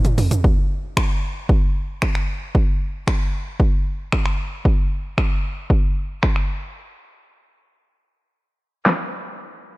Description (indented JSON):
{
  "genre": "pop",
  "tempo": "114 BPM",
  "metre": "4/4",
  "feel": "straight",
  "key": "none",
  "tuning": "none",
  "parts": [
    { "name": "deep house drum kit", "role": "drums", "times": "0.0-9.0 s", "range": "finger snaps, handclaps, hi-hat, kick drum, shaker, snare drum, toms", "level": "-18 LUFS", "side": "equal", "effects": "none" }
  ],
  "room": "little or no reverb",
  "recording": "low-pass filter",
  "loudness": "-18 LUFS",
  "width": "side -20 dB against mid",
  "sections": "0.4-8.9 A section",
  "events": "drum fill 0.0-0.4; break 6.8-8.9",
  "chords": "none"
}